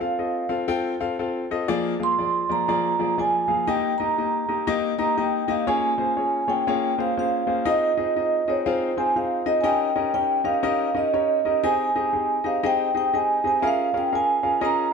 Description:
soul; 121 BPM; 4/4; swing 62% on 8ths; Bb dorian; A4 = 440 Hz
vibraphone with soft mallets; melody; 0.0-14.9 s; C5 to C6; -22 LUFS; right 4 dB; slapback echo
clear baby grand piano; accompaniment; 0.0-14.9 s; F3 to G5; -25 LUFS; left 5 dB
moderate echo chamber reverb, RT60 2.0 s; -20 LUFS; side -5 dB against mid
0.0-5.7 A section; 5.7-14.9 B section
0.0 F; 1.7 Bb7/F; 3.7 Eb; 5.7 Bbm7; 7.7 Fm7; 9.6 Eb7; 11.6 Abmaj7; 13.6 Bbm7
0.19 0.69 1.19 | 1.68 2.18 2.68 3.18 | 3.68 4.17 4.67 5.17 | 5.67 6.17 6.66 7.16 | 7.66 8.15 8.65 9.15 | 9.65 10.14 10.64 11.14 | 11.64 12.13 12.63 13.13 | 13.62 14.12 14.62

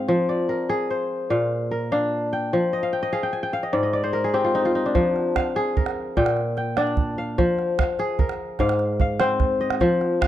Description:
west african traditional, West African string and xylophone music; 99 BPM (dotted quarters); 12/8; straight; F dorian; A4 = 441 Hz
kora; arpeggios; 0.0-10.3 s; Ab2 to Ab5; -21 LUFS; left 1 dB
calabash; percussion; 5.0-10.3 s; -24 LUFS; right 4 dB
light reverb; dry, close 1970s-style studio recording; -20 LUFS; side -12 dB against mid
0.0-5.0 A section; 5.0-10.3 A section
kora fill 2.7-5.0
0.1 Fm; 1.3 Bb; 2.5 Fm; 3.7 Ab; 5.0 Fm; 6.2 Bb; 7.4 Fm; 8.6 Ab
| 0.09 0.69 1.30 1.91 | 2.52 3.13 3.73 4.34 | 4.95 5.56 6.17 6.78 | 7.38 7.99 8.60 9.21 | 9.81

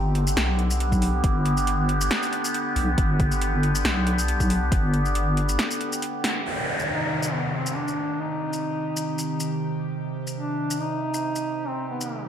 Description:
deep dubstep; 138 BPM; 4/4; swing 55% on 16ths, half-time; C harmonic minor; A4 = 440 Hz
overtone-sweeping drone; sustained chords; 0.0-12.3 s; C3 to G4; -28 LUFS; equal; chorus, built-in reverb
deep soft wobble bass; bass; 0.0-5.6 s; G1 to B1; -23 LUFS; equal; chorus
deep house drum kit; drums; 0.2-12.1 s; hi-hat, shaker, snare drum; -28 LUFS; equal; overdrive
electronic kick drum; drums; 0.9-4.8 s; -24 LUFS; equal; overdrive
downlifter; sound effects; 6.5-9.9 s; -30 LUFS; equal
mellow duduk; melody; 6.9-12.3 s; B3 to Eb4; -29 LUFS; equal; dub echo
moderate plate reverb, RT60 1.5 s, digital ambience; dreamy mix soaked in reverb; -22 LUFS; side -9 dB against mid
0.0-6.5 A section; 6.5-12.3 B section
break 5.6-6.5; drum fill 6.2; band accent 6.2; filter sweep on synth drone 6.5-12.3
0.0 G; 6.5 Cm
0.37 0.80 | 1.24 1.67 2.11 2.54 | 2.98 3.41 3.85 4.28 | 4.72 5.15 5.59 6.02 | 6.46 6.89 7.33 7.76 | 8.20 8.63 9.06 9.50 | 9.93 10.37 10.80 11.24 | 11.67 12.11

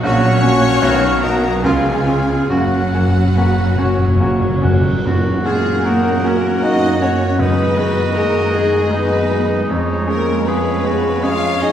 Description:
classical, romantic movement for piano and orchestra; 68-80 BPM; 3/4; rubato; F# major; A4 = 439 Hz
clear baby grand piano; melody; 0.0-11.7 s; A#1 to G#4; -19 LUFS; left 1 dB
warm symphonic violin section; melody; 0.0-11.7 s; G#4 to C#6; -27 LUFS; left 2 dB
clear oboe; second line; 0.0-11.7 s; C#4 to F#5; -26 LUFS; right 1 dB
large flute ensemble; second line; 0.0-11.7 s; F#4 to E#5; -27 LUFS; equal
rich symphonic viola section; accompaniment; 0.0-11.7 s; C#3 to F#4; -25 LUFS; right 1 dB
dark trombone section; sustained chords; 0.0-11.7 s; C#3 to B3; -27 LUFS; right 2 dB
mellow French horn section; sustained chords; 0.0-11.7 s; F#3 to G#4; -27 LUFS; left 5 dB
dark symphonic cello section; bass; 0.0-11.7 s; F#2 to E#4; -23 LUFS; right 1 dB
rich symphonic double bass section; bass; 0.0-11.7 s; F#1 to F#2; -21 LUFS; right 2 dB
rich symphonic violin section; second line; 0.1-11.7 s; F#4 to E#5; -25 LUFS; left 2 dB
clear trumpet; stabs; 0.1-11.7 s; E#4 to F#5; -24 LUFS; equal
cymbal swell and tam-tam; percussion; 2.5-8.1 s; -30 LUFS; left 1 dB
timpani; percussion; 2.5-8.5 s; F#2; -19 LUFS; left 1 dB
wet scoring stage reverb, RT60 1.9 s; heard from further back in the room; -13 LUFS; side -10 dB against mid
0.0-5.1 A section; 5.1-11.7 B section
timpani fill 2.5-5.1; band accent 5.1-5.8
0.1 F#/A#; 0.8 B; 1.6 C#7; 2.5 F#; 7.4 G#m7/F#; 9.7 C#7/E#
| 0.05 0.83 1.64 | 2.50 3.37 4.21 | 5.05 5.85 6.63 | 7.39 8.15 8.93 | 9.70 10.47 11.24

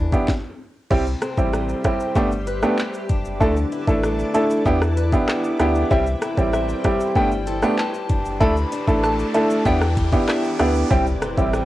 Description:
dancehall; 96 BPM; 4/4; straight; A4 = 440 Hz
picked swing-style acoustic guitar; arpeggios; 0.0-11.7 s; C3 to B4; -30 LUFS; left 4 dB; cassette tape
warm sub bass; bass; 0.0-11.7 s; F#1 to E2; -24 LUFS; equal
bright baby grand piano; accompaniment; 0.1-11.7 s; G3 to A4; -20 LUFS; right 1 dB; cassette tape
island pop drum kit; drums; 0.1-11.7 s; crash cymbal, handclaps, hi-hat, kick drum, rim click, shaker, snare drum; -23 LUFS; equal; cassette tape
granular cloud pad; sustained chords; 1.7-11.7 s; E4 to D6; -31 LUFS; equal; built-in reverb, sidechain pumping, cassette tape
soft synth bell; second line; 5.9-10.7 s; D5 to B5; -28 LUFS; left 2 dB; chorus, cassette tape, analog delay
riser and impact; sound effects; 8.0-11.7 s; -35 LUFS; equal
mellow baroque flute; melody; 10.9-11.5 s; E5 to G5; -26 LUFS; equal; cassette tape, analog delay
light reverb; home recording on cassette; -18 LUFS; side -15 dB against mid
0.9-10.9 A section
stop 0.3-0.9; riser 8.0-10.9; impact 10.9-11.7
0.0 Em7; 0.9 C; 2.2 Gadd9; 3.4 Dsus2; 4.7 Em7; 5.9 C; 7.2 Gadd9; 8.4 Dsus2; 9.7 Em7; 10.9 C
0.28 | 0.91 1.53 2.16 2.78 | 3.41 4.03 4.66 5.28 | 5.91 6.53 7.16 7.78 | 8.41 9.03 9.66 10.28 | 10.91 11.53

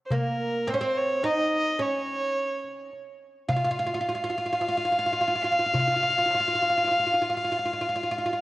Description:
Turkish makam ensemble; 107 BPM (eighths); 10/8; straight; F makam ussak; A4 = 440 Hz
warm violin; melody; 0.1-8.4 s; Bb4 to F5; -26 LUFS; equal
oud; second line; 0.1-8.4 s; Bb3 to F4; -28 LUFS; right 1 dB; cassette tape
darbuka; percussion; 0.1-8.1 s; -30 LUFS; left 1 dB
moderate lush hall reverb, RT60 2.6 s; home recording on cassette; -23 LUFS; side -17 dB against mid
0.0-8.4 A section
| 0.12 0.68 1.24 1.81 2.37 2.93 3.49 4.06 4.62 5.18 | 5.74 6.31 6.87 7.43 7.99

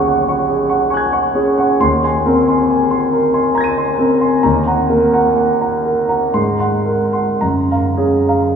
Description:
classical, impressionist solo piano; 52-74 BPM; 3/4; rubato; A4 = 439 Hz
warm concert grand piano; solo; 0.0-8.6 s; Eb2 to Eb7; -12 LUFS; equal
wet cathedral reverb, RT60 5.3 s; recorded in a church or concert hall; -13 LUFS; side -7 dB against mid
0.0-8.6 A section
0.0 Ebm7; 1.8 Abadd9/Eb; 4.4 Ebm; 6.4 Ab9; 7.4 Gbmaj9
0.08 0.91 | 1.82 2.70 3.57 | 4.45 5.37 6.36 | 7.43

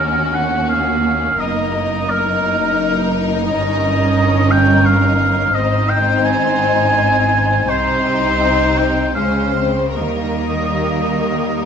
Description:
classical, slow romantic movement for symphony orchestra; 70-88 BPM; 3/4; rubato; A4 = 440 Hz
warm symphonic violin section; melody; 0.0-11.7 s; Gb4 to C5; -24 LUFS; left 6 dB
clear oboe; second line; 0.0-11.7 s; Bb4 to Ab5; -18 LUFS; right 1 dB
warm symphonic violin section; second line; 0.0-11.7 s; Bb3 to Eb4; -22 LUFS; left 3 dB
warm symphonic viola section; accompaniment; 0.0-11.7 s; G3 to Db4; -22 LUFS; right 2 dB
dark symphonic double bass section; bass; 0.0-11.7 s; Gb1 to Eb2; -23 LUFS; right 2 dB
rich symphonic cello section; bass; 0.0-11.7 s; Eb2 to Eb3; -22 LUFS; right 1 dB
moderate recital hall reverb, RT60 1.4 s; minimal, uncompressed stereo recording; -14 LUFS; side -7 dB against mid
0.0-11.7 A section
0.0 Ebm7; 1.4 Ebm/Gb; 3.5 Eb7/G; 5.5 Ab; 7.7 Cm; 9.2 Dbmaj7; 10.0 Eb
0.70 | 1.40 2.10 2.79 | 3.48 4.17 4.86 | 5.55 6.26 6.98 | 7.70 8.41 9.15 | 9.97 10.81 11.63

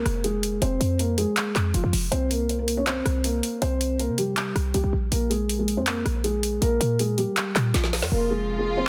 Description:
hip hop, trap; 160 BPM; 4/4; half-time; F minor; A4 = 440 Hz
felt-muted upright piano; melody; 0.0-8.9 s; F3 to Db5; -28 LUFS; equal; low-pass filter, delay
short 808-style bass; bass; 0.0-8.9 s; F1 to C3; -28 LUFS; equal
trap drum kit; drums; 0.1-8.1 s; handclaps, hi-hat, rim click, snare drum; -30 LUFS; equal
warm studio string section; sustained chords; 8.1-8.9 s; C3 to F4; -33 LUFS; equal
studio reverb; dense, heavily limited modern master; -24 LUFS; mono
0.0-8.9 A section
drum fill 7.7-8.1; hi-hats muted 8.1-8.9
0.0 Fm; 2.1 C5; 5.1 Bb5; 8.1 Fm
0.24 | 0.62 0.99 1.37 1.74 | 2.12 2.49 2.87 3.24 | 3.62 3.99 4.37 4.74 | 5.12 5.49 5.87 6.24 | 6.62 6.99 7.37 7.74 | 8.12 8.49 8.87

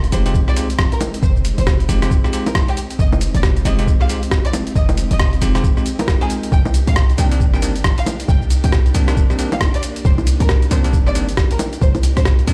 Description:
UK garage, two-step garage; 136 BPM; 4/4; swing 61% on 16ths; F dorian; A4 = 440 Hz
soft string machine; sustained chords; 0.0-12.5 s; Ab3 to G4; -32 LUFS; equal
short 808-style bass; bass; 0.0-12.5 s; F1 to C2; -20 LUFS; equal
boom bap sampler-style drum kit; drums; 0.0-12.5 s; bongos, hi-hat, rim click, shaker; -26 LUFS; equal; studio reverb
dark studio violin section; melody; 0.1-12.2 s; G4 to G5; -31 LUFS; equal; digital delay
bell-like tine electric piano; stabs; 0.1-12.5 s; Eb3 to Bb4; -26 LUFS; equal; digital delay
electronic kick drum; drums; 0.3-12.4 s; -19 LUFS; equal; studio reverb
digital ambience; played on a big sound system in a bare room, large studio reverb; -16 LUFS; mono
0.0-12.5 A section
0.0 Fm7; 6.5 Cm7
0.34 0.79 | 1.23 1.67 2.11 2.55 | 2.99 3.43 3.87 4.31 | 4.75 5.20 5.64 6.08 | 6.52 6.96 7.40 7.84 | 8.29 8.73 9.17 9.61 | 10.05 10.49 10.93 11.37 | 11.81 12.26

